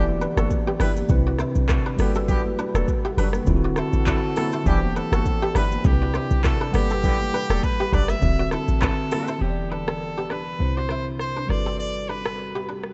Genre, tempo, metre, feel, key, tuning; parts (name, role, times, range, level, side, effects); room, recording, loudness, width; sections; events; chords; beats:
afrobeats; 101 BPM; 4/4; swing 55% on 16ths; E minor; A4 = 441 Hz
warm horn section; second line; 0.0-9.2 s; D3 to B4; -35 LUFS; equal
bell-like tine electric piano; accompaniment; 0.0-12.9 s; C3 to F#5; -30 LUFS; equal
deep dark ambient pad; sustained chords; 0.0-12.9 s; F#4 to F#5; -38 LUFS; equal
short 808-style bass; bass; 0.0-12.9 s; D1 to C2; -26 LUFS; equal
congas; percussion; 0.1-9.3 s; -36 LUFS; equal
kora; riff; 0.2-12.8 s; B3 to D5; -34 LUFS; equal; tape echo
afro-pop drum kit; drums; 0.2-12.9 s; handclaps, hi-hat, kick drum, rim click, shaker; -28 LUFS; equal
brilliant trumpet; melody; 3.8-12.7 s; G4 to E5; -32 LUFS; equal
light reverb, small room reverb; rough home demo mix, nothing above 8.0 kHz; -23 LUFS; mono
0.0-9.4 A section; 9.4-12.9 B section
0.0 Em7; 1.1 Cmaj7; 2.0 Gmaj9; 3.5 D9; 4.7 Em7; 5.8 Cmaj7; 6.7 Gmaj9; 8.2 D9; 9.4 Em7; 10.6 C; 11.5 Gmaj9
0.50 1.10 1.69 | 2.29 2.88 3.47 4.07 | 4.66 5.25 5.85 6.44 | 7.04 7.63 8.23 8.82 | 9.41 10.01 10.60 11.20 | 11.79 12.38